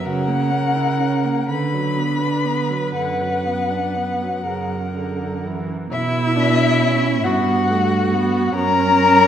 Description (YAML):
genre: classical, slow romantic movement for string quartet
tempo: 40-47 BPM (dotted quarters)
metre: 6/8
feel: rubato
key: B minor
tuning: A4 = 440 Hz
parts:
  - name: muted violin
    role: melody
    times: 0.0-9.3 s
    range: E5 to B5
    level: -22 LUFS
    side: left 6 dB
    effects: none
  - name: muted violin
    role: second line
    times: 0.0-9.3 s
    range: E4 to B4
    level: -22 LUFS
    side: left 2 dB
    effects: none
  - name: muted viola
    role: accompaniment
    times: 0.0-9.3 s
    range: C#3 to E4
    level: -24 LUFS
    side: right 3 dB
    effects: none
  - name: muted cello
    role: bass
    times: 0.0-9.3 s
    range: F#2 to D3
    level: -22 LUFS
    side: right 3 dB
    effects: none
room: wet scoring stage reverb, RT60 1.7 s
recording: none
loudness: -17 LUFS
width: side -9 dB against mid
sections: 0.0-5.9 A section; 5.9-9.3 B section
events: none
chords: 0.0 F#7/C#; 1.5 Bm/D; 2.9 Bm/F#; 4.5 F#; 5.9 Bm; 8.5 F#